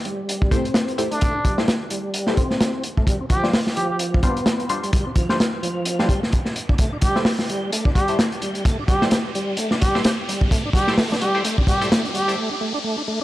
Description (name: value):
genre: breakbeat, breaks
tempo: 129 BPM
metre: 4/4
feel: swing 58% on 16ths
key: unclear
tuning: A4 = 440 Hz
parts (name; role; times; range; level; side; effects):
- riser; sound effects; 2.9-13.2 s; none; -33 LUFS; equal; none
- tonewheel organ; riff; 0.1-13.2 s; F3 to G4; -26 LUFS; equal; overdrive, chorus vibrato, slow rotary speaker, low-pass filter, analog delay
- crunchy breakbeat drum kit; drums; 0.1-12.4 s; hi-hat, kick drum, snare drum; -20 LUFS; equal; none
- band-passed chord stab; stabs; 0.5-12.4 s; G3 to C5; -28 LUFS; left 2 dB; phaser, analog delay
- trumpet with plunger mute; melody; 1.1-4.0, 7.0-12.3 s; D4 to G4; -26 LUFS; equal; old record sound, analog delay
room: light reverb, studio ambience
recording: dry, gritty hardware recording, transformer saturation, cassette tape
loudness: -18 LUFS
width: side -16 dB against mid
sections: 0.0-13.2 A section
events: build-up 0.0-13.2; filter sweep on tonewheel organ 0.0-13.2; filter sweep on synth stab 0.0-13.2; riser 2.9-13.2; break 12.4-13.2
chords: 0.0 Am7; 3.1 G7sus4; 6.8 Gsus4